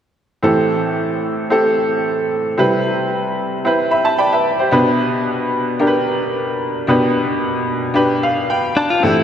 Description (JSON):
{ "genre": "pop", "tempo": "112 BPM", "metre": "4/4", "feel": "straight", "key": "G major", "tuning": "A4 = 439 Hz", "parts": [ { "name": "bright upright piano", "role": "accompaniment", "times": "0.4-9.2 s", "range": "A2 to B5", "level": "-15 LUFS", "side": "equal", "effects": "none" }, { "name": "direct-recorded clean electric guitar", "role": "melody", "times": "8.8-9.2 s", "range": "D4 to F4", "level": "-15 LUFS", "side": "left 3 dB", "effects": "none" } ], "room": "wet lush hall reverb, RT60 2.9 s", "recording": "dreamy mix soaked in reverb", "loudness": "-15 LUFS", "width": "side -9 dB against mid", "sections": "0.4-9.0 A section", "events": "upright piano fill 3.7-4.7, 7.9-9.0", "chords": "0.4 Am7; 2.6 Cmaj7; 4.7 G/B" }